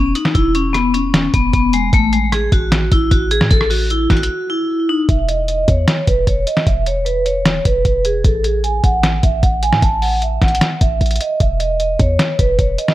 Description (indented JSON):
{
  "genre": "hip hop, trap",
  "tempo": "152 BPM",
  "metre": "4/4",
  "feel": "half-time",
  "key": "E major",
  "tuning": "A4 = 440 Hz",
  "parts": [
    { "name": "vibraphone with hard mallets", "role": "melody", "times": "0.0-12.9 s", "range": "G#3 to G#5", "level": "-17 LUFS", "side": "equal", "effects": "low-pass filter, tape echo" },
    { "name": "warm 808-style bass", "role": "bass", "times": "0.0-12.8 s", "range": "E1 to A2", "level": "-18 LUFS", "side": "equal", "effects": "none" },
    { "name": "lo-fi sampler-style drum kit", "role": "drums", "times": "0.2-12.9 s", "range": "hi-hat, kick drum, rim click, snare drum", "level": "-16 LUFS", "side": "equal", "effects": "none" }
  ],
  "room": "light reverb",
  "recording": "none",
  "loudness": "-13 LUFS",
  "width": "side -15 dB against mid",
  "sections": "0.0-5.1 A section; 5.1-12.9 B section",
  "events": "break 4.3-5.1",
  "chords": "0.0 E5; 1.9 A5; 5.1 E5; 8.2 A5; 11.4 E5"
}